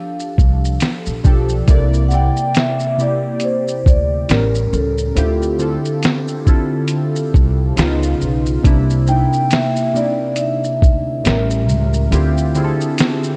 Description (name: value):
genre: lo-fi hip hop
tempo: 69 BPM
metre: 4/4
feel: swing 57% on 16ths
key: unclear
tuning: A4 = 440 Hz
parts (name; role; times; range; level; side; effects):
- vibraphone with soft mallets; melody; 0.0-13.4 s; A4 to G5; -24 LUFS; equal; diffuse ambient delay
- warm analog keys; accompaniment; 0.0-13.4 s; A2 to D5; -22 LUFS; equal; chorus, phaser, cassette tape
- lo-fi sampler-style drum kit; drums; 0.2-13.4 s; hi-hat, kick drum, shaker, snare drum; -18 LUFS; equal; none
- upright bass; bass; 0.4-12.7 s; A1 to D2; -20 LUFS; equal; none
room: light reverb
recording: none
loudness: -16 LUFS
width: mono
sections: 0.0-1.7 A section; 1.7-13.4 B section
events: none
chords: 0.0 F69; 1.7 C9; 4.3 A7b9; 5.2 Dm11; 7.8 Db9; 8.6 C9; 11.3 A7b9; 12.1 Dm11